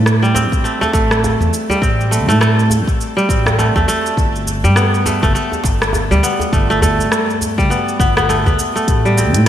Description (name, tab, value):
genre	organic downtempo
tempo	102 BPM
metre	4/4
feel	swing 59% on 16ths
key	A minor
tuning	A4 = 440 Hz
part	kora	arpeggios	0.0-9.5 s	G3 to C4	-16 LUFS	equal	digital delay, shimmer reverb
part	upright bass	bass	0.0-9.5 s	G1 to A2	-16 LUFS	equal	tube saturation, sidechain pumping
part	organic electronic drum kit	drums	0.1-9.5 s	congas, hi-hat, rim click, shaker	-22 LUFS	equal	gated reverb
part	djembe	percussion	0.4-9.3 s	none	-24 LUFS	right 1 dB	none
part	electronic kick drum	drums	0.5-9.0 s	none	-17 LUFS	equal	none
part	quartz singing bowl	texture	8.9-9.5 s	G4	-27 LUFS	left 8 dB	none
room	moderate lush hall reverb, RT60 2.5 s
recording	bright 1980s-style digital production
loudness	-12 LUFS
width	side -11 dB against mid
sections	0.0-9.5 A section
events	none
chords	0.0 Am7; 4.2 G; 8.9 Am7